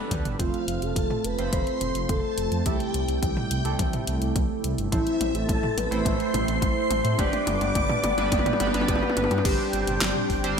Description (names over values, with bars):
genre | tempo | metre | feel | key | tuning
synthwave | 106 BPM | 4/4 | straight | unclear | A4 = 438 Hz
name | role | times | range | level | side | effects
warm analog pad | sustained chords | 0.0-10.6 s | C3 to B4 | -33 LUFS | right 1 dB | chorus, sidechain pumping
chorused polysynth | stabs | 0.0-10.6 s | G3 to C5 | -30 LUFS | right 4 dB | digital delay
dark detuned saw bass | bass | 0.1-10.5 s | F1 to A2 | -29 LUFS | equal | none
electronic kick drum | drums | 0.1-10.4 s | none | -28 LUFS | equal | none
pop drum kit | drums | 0.1-10.6 s | crash cymbal, handclaps, hi-hat, snare drum, toms | -30 LUFS | left 1 dB | none
soft octave-layered synth lead | melody | 0.4-10.6 s | E4 to D5 | -29 LUFS | left 2 dB | chorus, phaser, ping-pong delay
string machine, violins | second line | 0.4-10.6 s | E5 to D6 | -33 LUFS | equal | ensemble chorus, cassette tape, digital delay
room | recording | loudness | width
moderate plate reverb, RT60 2.1 s | bright 1980s-style digital production | -22 LUFS | side -6 dB against mid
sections
0.4-9.4 A section; 9.4-10.6 B section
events
drum fill 0.0-0.4, 0.4-9.4; filter sweep on analog synth pad 0.4-9.4; filter sweep on analog polysynth 0.4-9.4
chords
0.4 F; 2.7 C6; 4.9 Am; 7.2 G; 9.4 Gsus4